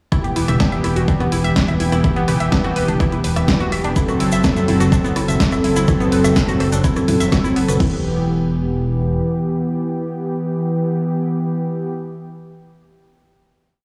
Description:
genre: melodic techno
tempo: 125 BPM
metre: 4/4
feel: straight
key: E minor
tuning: A4 = 440 Hz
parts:
  - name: analog pluck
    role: arpeggios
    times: 0.1-8.0 s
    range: B3 to E5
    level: -27 LUFS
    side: equal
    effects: chorus, sidechain pumping, digital delay
  - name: brassy analog pad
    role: stabs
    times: 0.1-11.9 s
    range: E3 to A4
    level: -22 LUFS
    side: equal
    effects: chorus, sidechain pumping, digital delay
  - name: electronic kick drum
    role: drums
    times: 0.1-7.9 s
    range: none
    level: -20 LUFS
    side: equal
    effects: none
  - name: punchy analog drum machine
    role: drums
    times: 0.1-7.9 s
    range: crash cymbal, hi-hat, rim click, snare drum, toms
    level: -25 LUFS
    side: equal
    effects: sidechain pumping on hats, sidechain pumping on toms, sidechain pumping on cymbals
  - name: dark detuned saw bass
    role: bass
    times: 0.2-9.2 s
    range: E1 to F#2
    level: -24 LUFS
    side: equal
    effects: sidechain pumping
  - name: tube shaker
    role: percussion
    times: 4.0-7.8 s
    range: none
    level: -34 LUFS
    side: equal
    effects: none
room: light reverb, digital ambience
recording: played on a big sound system in a bare room, large studio reverb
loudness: -18 LUFS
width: mono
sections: 0.1-7.8 drop; 7.8-11.6 final chord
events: drop 0.1-7.8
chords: 0.1 Em; 4.0 F#dim; 7.8 Em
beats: | 0.12 0.60 1.08 1.56 | 2.04 2.52 3.00 3.48 | 3.96 4.44 4.92 5.40 | 5.88 6.36 6.84 7.32 | 7.80 8.28 8.76 9.24 | 9.72 10.20 10.68 11.16

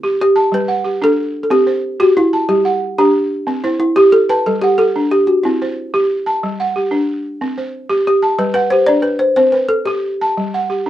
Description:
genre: west african traditional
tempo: 122 BPM (dotted quarters)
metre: 12/8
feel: straight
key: C lydian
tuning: A4 = 440 Hz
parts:
  - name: balafon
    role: arpeggios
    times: 0.0-10.9 s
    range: G3 to A5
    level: -17 LUFS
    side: right 1 dB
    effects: none
  - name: balafon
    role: melody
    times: 0.2-10.2 s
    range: E4 to D5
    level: -13 LUFS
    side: equal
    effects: none
room: moderate small room reverb, RT60 0.5 s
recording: minimal, uncompressed stereo recording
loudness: -13 LUFS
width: side -12 dB against mid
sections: 0.0-10.9 A section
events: none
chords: 0.0 N.C.; 0.5 G; 1.5 C; 2.5 G5; 3.5 C5; 4.5 G5; 5.4 C; 6.4 G5; 7.4 C5; 8.4 G5; 9.4 C5; 10.4 G5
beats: 0.04 0.53 1.02 | 1.51 2.00 2.49 2.98 | 3.47 3.96 4.45 4.95 | 5.44 5.93 6.42 6.92 | 7.41 7.90 8.39 8.89 | 9.38 9.87 10.37 10.86

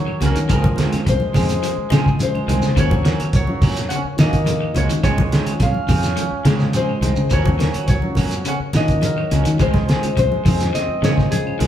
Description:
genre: afrobeat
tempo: 105 BPM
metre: 4/4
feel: straight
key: unclear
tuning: A4 = 442 Hz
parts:
  - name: Celtic harp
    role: melody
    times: 0.0-11.7 s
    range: Ab4 to Gb5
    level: -24 LUFS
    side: left 2 dB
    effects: none
  - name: clear trombone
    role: second line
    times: 0.0-11.7 s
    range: Db3 to Db4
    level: -30 LUFS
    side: right 4 dB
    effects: none
  - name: clean electric guitar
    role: arpeggios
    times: 0.0-11.7 s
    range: C3 to Ab3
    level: -28 LUFS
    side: left 3 dB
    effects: none
  - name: fingered electric bass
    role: bass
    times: 0.0-11.7 s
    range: C2 to Eb3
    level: -21 LUFS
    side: equal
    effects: none
  - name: claves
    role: percussion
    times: 0.1-11.6 s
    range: none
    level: -40 LUFS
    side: right 2 dB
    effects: none
  - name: reed electric piano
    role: accompaniment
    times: 0.2-11.5 s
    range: Eb3 to Ab4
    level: -32 LUFS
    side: left 1 dB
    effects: medium tremolo
  - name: electric guitar at the edge of break-up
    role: stabs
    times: 0.2-11.7 s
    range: F3 to Ab4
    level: -27 LUFS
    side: right 3 dB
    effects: spring reverb
  - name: cloth-damped thuddy drum kit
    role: drums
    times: 0.2-11.7 s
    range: hi-hat, kick drum, snare drum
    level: -20 LUFS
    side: equal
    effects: none
  - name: congas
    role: percussion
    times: 0.2-11.7 s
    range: none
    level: -27 LUFS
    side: equal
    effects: none
  - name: shekere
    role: percussion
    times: 0.2-11.7 s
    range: none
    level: -29 LUFS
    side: right 1 dB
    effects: none
room: wet large studio reverb, RT60 1.3 s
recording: band playing live in one room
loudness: -15 LUFS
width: side -10 dB against mid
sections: 0.0-11.7 A section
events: none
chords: 0.0 Ebm7; 0.5 Dbmaj7; 2.8 Ebm7; 5.0 Dbmaj7; 7.3 Ebm7; 9.6 Dbmaj7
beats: | 0.50 1.07 1.64 2.20 | 2.77 3.34 3.91 4.47 | 5.04 5.61 6.18 6.75 | 7.32 7.89 8.46 9.03 | 9.60 10.17 10.74 11.32

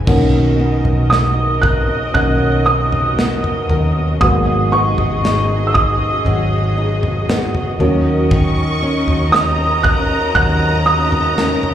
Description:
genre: pop ballad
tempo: 58 BPM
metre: 4/4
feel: straight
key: B major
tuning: A4 = 439 Hz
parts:
  - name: warm studio violin section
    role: second line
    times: 0.0-0.1, 8.3-11.7 s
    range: A#5 to C#6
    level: -23 LUFS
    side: left 1 dB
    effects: slapback echo
  - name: dark upright piano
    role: accompaniment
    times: 0.0-11.7 s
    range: D#3 to F#6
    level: -17 LUFS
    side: right 2 dB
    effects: slapback echo
  - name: warm studio string section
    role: sustained chords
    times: 0.0-11.7 s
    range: B2 to D#5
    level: -23 LUFS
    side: left 1 dB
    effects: none
  - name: flamenco guitar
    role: arpeggios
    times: 0.0-11.7 s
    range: G#2 to B4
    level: -23 LUFS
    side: left 1 dB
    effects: slapback echo
  - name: vintage muted fingered electric bass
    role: bass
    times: 0.0-11.7 s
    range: G#1 to D#2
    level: -18 LUFS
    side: equal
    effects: none
  - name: modern studio drum kit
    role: drums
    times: 0.1-11.7 s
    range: crash cymbal, kick drum, snare drum, toms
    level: -20 LUFS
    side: equal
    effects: none
room: light reverb, studio reverb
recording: live gig heard through the venue's PA, club reverb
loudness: -13 LUFS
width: side -10 dB against mid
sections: 0.1-11.7 A section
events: upright piano solo 0.1-11.7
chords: 0.1 Bmaj7; 4.2 G#m7; 7.8 D#m7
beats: | 0.07 1.11 2.15 3.18 | 4.21 5.24 6.26 7.29 | 8.32 9.33 10.35 11.38

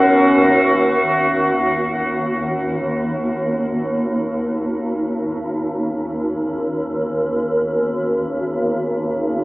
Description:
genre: ambient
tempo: free time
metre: none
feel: none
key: unclear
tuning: A4 = 445 Hz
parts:
  - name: deep dark ambient pad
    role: sustained chords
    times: 0.0-9.4 s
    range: Cb4 to Bb4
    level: -23 LUFS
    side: equal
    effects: chorus, built-in reverb
  - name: swarming drone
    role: drone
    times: 0.0-9.4 s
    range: Ab1 to Eb2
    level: -20 LUFS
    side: equal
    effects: built-in reverb
  - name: metallic inharmonic drone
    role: texture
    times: 0.0-0.6 s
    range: Gb4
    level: -19 LUFS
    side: equal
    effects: chorus, built-in reverb
room: wet huge ambient reverb, RT60 7.9 s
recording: telephone sound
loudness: -17 LUFS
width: side -21 dB against mid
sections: 0.6-9.4 A section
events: fade-in on ambient pad 0.6-9.4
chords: 0.0 Abmadd9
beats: free time

